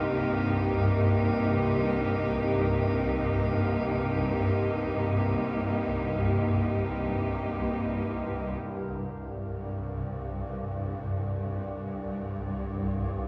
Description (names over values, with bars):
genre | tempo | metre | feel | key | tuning
dark ambient drone | free time | none | none | unclear | A4 = 439 Hz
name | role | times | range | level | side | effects
muted symphonic cello section | sustained chords | 0.0-8.5 s | C3 to G4 | -31 LUFS | equal | none
swarming drone | drone | 0.0-13.3 s | C2 to G2 | -32 LUFS | equal | built-in reverb
metallic inharmonic drone | texture | 0.0-8.6 s | Bb4 | -40 LUFS | equal | chorus, built-in reverb
room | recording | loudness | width
wet spring reverb, RT60 2.4 s | none | -29 LUFS | mono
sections
0.0-8.5 A section; 8.5-13.3 B section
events
none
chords
0.0 Eb6/C; 8.5 C5